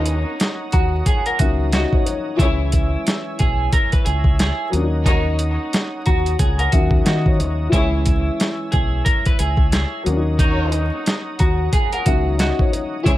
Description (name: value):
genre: hip hop, boom-bap hip-hop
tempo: 90 BPM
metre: 4/4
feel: swing 60% on 16ths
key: unclear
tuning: A4 = 440 Hz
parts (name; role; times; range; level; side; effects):
- clean electric guitar; melody; 0.0-13.2 s; D#4 to B4; -24 LUFS; right 1 dB; analog chorus, high-pass filter, low-pass filter
- dark baby grand piano; accompaniment; 0.0-13.2 s; D#3 to A#5; -26 LUFS; left 4 dB; high-pass filter, low-pass filter
- tonewheel organ; sustained chords; 0.0-13.2 s; C#5 to E6; -32 LUFS; right 1 dB; chorus vibrato, lush chorus, high-pass filter, low-pass filter
- warm studio string section; stabs; 0.0-13.2 s; E4 to C#5; -29 LUFS; right 1 dB; high-pass filter, low-pass filter, tape echo
- deep dub fingered electric bass; bass; 0.0-13.2 s; B1 to D#3; -20 LUFS; equal; none
- boom bap sampler-style drum kit; drums; 0.1-13.2 s; hi-hat, kick drum, snare drum; -18 LUFS; equal; none
room: light reverb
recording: vinyl crackle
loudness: -16 LUFS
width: side -15 dB against mid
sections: 0.0-13.2 A section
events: none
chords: 0.0 D#m7; 2.4 C#m; 4.7 D#m7; 7.7 C#m; 10.1 D#m7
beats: 0.39 1.06 1.73 | 2.39 3.06 3.73 4.39 | 5.06 5.73 6.39 7.06 | 7.73 8.39 9.06 9.73 | 10.39 11.06 11.73 12.39 | 13.06